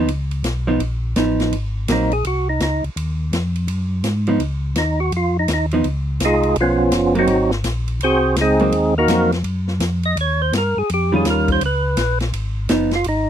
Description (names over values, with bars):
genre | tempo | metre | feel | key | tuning
soul jazz organ trio | 167 BPM | 4/4 | swing 64% on 8ths | Ab mixolydian | A4 = 441 Hz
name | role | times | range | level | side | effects
vintage hollow-body jazz guitar | accompaniment | 0.0-2.1, 4.3-12.9 s | Eb3 to F4 | -18 LUFS | right 2 dB | none
mellow tonewheel organ | bass | 0.0-13.3 s | Gb1 to Ab2 | -21 LUFS | equal | chorus vibrato, slow rotary speaker
swinging big-band drum kit | drums | 0.1-13.2 s | hi-hat, kick drum, ride cymbal, snare drum | -27 LUFS | left 2 dB | none
percussive tonewheel organ | melody | 1.9-13.3 s | F3 to Eb5 | -17 LUFS | right 1 dB | slow rotary speaker, overdrive
room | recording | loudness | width
little or no reverb | dry, close 1970s-style studio recording | -16 LUFS | side -10 dB against mid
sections
0.0-13.3 A section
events
tonewheel organ solo 0.0-13.3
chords
0.1 Db9; 1.5 Ab9; 4.4 Db9; 7.3 Ab9; 10.2 Eb9; 11.6 Db9